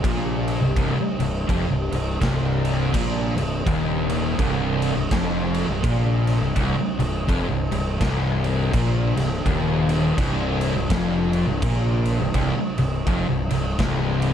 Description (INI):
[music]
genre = stoner and doom metal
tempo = 83 BPM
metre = 4/4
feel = swing 60% on 8ths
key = C minor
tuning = A4 = 440 Hz
[part]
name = phased string machine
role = sustained chords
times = 0.0-14.3 s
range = C3 to D4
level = -34 LUFS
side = equal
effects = ensemble chorus, phaser
[part]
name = distorted electric guitar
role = riff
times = 0.0-14.3 s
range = C2 to Bb2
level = -28 LUFS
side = equal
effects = distortion
[part]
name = thick fuzz guitar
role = riff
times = 0.0-14.3 s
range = C2 to Bb2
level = -26 LUFS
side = left 7 dB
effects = distortion
[part]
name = thick fuzz guitar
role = riff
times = 0.0-14.3 s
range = C2 to Bb2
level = -26 LUFS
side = right 6 dB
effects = distortion
[part]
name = fuzz fingered electric bass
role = bass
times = 0.0-14.3 s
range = C1 to Bb1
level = -27 LUFS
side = equal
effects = overdrive
[part]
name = raw garage drum kit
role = drums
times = 0.0-14.3 s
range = crash cymbal, kick drum, snare drum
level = -26 LUFS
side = equal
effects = none
[sound]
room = light reverb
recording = dark, warm production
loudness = -20 LUFS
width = side -9 dB against mid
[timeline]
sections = 0.0-14.3 A section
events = none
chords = 0.0 Cm